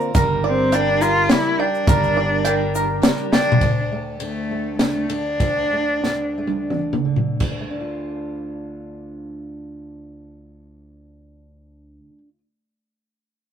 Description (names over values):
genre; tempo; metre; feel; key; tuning
indie folk with a building arrangement; 82-104 BPM; 3/4; straight; D minor; A4 = 440 Hz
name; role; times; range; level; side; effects
picked acoustic archtop guitar; accompaniment; 0.0-3.6 s; G3 to Bb4; -28 LUFS; left 4 dB; none
mellow tonewheel organ; sustained chords; 0.0-3.6 s; D3 to Bb4; -27 LUFS; right 3 dB; slow rotary speaker
bluegrass banjo; arpeggios; 0.0-3.6 s; Bb4 to Bb5; -24 LUFS; right 4 dB; analog delay
tube shaker; percussion; 0.0-3.2 s; none; -38 LUFS; left 6 dB; none
compact cocktail drum kit; drums; 0.1-7.6 s; crash cymbal, hi-hat, kick drum, ride cymbal, snare drum, toms; -20 LUFS; equal; none
fingered electric bass; bass; 0.2-3.0 s; G1; -25 LUFS; equal; none
warm cello; melody; 0.5-6.7 s; A3 to F4; -21 LUFS; left 1 dB; none
fingerpicked steel-string acoustic guitar; accompaniment; 3.6-12.4 s; D2 to F4; -28 LUFS; right 1 dB; none
room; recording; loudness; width
moderate small room reverb, RT60 0.5 s; rough rehearsal-room recording; -18 LUFS; side -8 dB against mid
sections
0.0-3.6 A section; 3.6-7.4 B section; 7.4-11.8 C section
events
drum fill 3.3, 6.0-7.4; slowing down 3.6-7.4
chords
0.2 Gm; 3.6 D5; 7.4 Dm